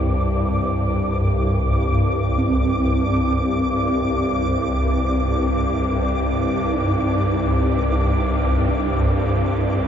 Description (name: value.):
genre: dark ambient drone.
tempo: free time.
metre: none.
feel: none.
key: C minor.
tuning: A4 = 440 Hz.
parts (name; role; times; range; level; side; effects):
deep dark ambient pad; sustained chords; 0.0-9.9 s; C4 to D5; -29 LUFS; left 3 dB; chorus, built-in reverb.
swarming drone; drone; 0.0-9.9 s; C2 to G2; -19 LUFS; equal; built-in reverb.
flickering grainy texture; texture; 0.0-9.9 s; D6; -27 LUFS; equal; built-in reverb.
gamelan-type bronze metallophone; arpeggios; 2.4-9.9 s; C4 to Eb4; -26 LUFS; right 1 dB; tape echo.
room: wet cathedral reverb, RT60 6.0 s.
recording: dark, warm production.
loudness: -18 LUFS.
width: side -8 dB against mid.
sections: 0.0-9.9 A section.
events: fade-in on ambient pad 0.0-9.9.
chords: 0.0 Cmadd9.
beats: free time.